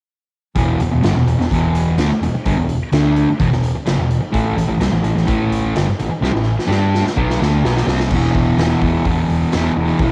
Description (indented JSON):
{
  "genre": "garage rock duo or trio",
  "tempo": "127 BPM",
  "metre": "4/4",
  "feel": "straight",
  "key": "E minor",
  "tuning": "A4 = 440 Hz",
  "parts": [
    { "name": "fuzz guitar", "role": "riff", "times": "0.6-10.1 s", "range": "E2 to G4", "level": "-18 LUFS", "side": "equal", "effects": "distortion, cassette tape" },
    { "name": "hollow-body short-scale fingered electric bass", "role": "bass", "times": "0.6-10.1 s", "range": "E1 to G2", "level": "-24 LUFS", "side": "equal", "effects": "none" },
    { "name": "raw garage drum kit", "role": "drums", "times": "0.6-10.1 s", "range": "crash cymbal, hi-hat, kick drum, snare drum", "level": "-24 LUFS", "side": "equal", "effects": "cassette tape" }
  ],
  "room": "moderate studio ambience, RT60 0.5 s",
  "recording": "home recording on cassette",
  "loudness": "-17 LUFS",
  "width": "mono",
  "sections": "0.6-8.1 A section; 8.1-10.1 B section",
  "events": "drum fill 6.2-8.1",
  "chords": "0.6 E5; 4.3 A5; 8.1 E5"
}